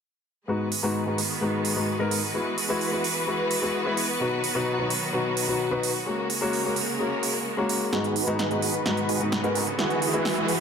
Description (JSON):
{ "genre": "EDM, festival progressive house", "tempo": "129 BPM", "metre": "4/4", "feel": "straight", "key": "G# minor", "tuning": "A4 = 440 Hz", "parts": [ { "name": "warm concert grand piano", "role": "accompaniment", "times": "0.5-10.5 s", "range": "G#2 to B4", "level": "-27 LUFS", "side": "left 2 dB", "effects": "dub echo" }, { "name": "rich studio string section", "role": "sustained chords", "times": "0.5-10.6 s", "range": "C#3 to B4", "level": "-29 LUFS", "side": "equal", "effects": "low-pass filter" }, { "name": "big-room dance drum kit", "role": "drums", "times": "0.7-10.6 s", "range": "hi-hat, snare drum", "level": "-29 LUFS", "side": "right 4 dB", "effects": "overdrive" }, { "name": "dense compressed supersaw", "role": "riff", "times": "7.9-10.6 s", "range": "D#4 to F#5", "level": "-28 LUFS", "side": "right 2 dB", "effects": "low-pass filter, dub echo" }, { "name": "riser", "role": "sound effects", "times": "8.8-10.6 s", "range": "none", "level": "-33 LUFS", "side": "right 2 dB", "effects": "none" } ], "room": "moderate lush hall reverb, RT60 2.0 s", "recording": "none", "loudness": "-23 LUFS", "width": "side -6 dB against mid", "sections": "0.5-7.9 A section; 7.9-10.6 B section", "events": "build-up 7.9-10.6; drum fill 7.9-10.6; filter sweep on supersaw synth 7.9-10.6; filter sweep on string section 7.9-10.6; riser 8.8-10.6", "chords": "0.5 G#m7; 2.3 Eadd9; 4.2 B; 6.1 F#add9; 7.9 G#m7; 9.8 Eadd9", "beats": "| 0.48 0.95 1.42 1.88 | 2.35 2.81 3.27 3.74 | 4.21 4.67 5.14 5.60 | 6.07 6.53 7.00 7.46 | 7.93 8.39 8.86 9.32 | 9.79 10.25" }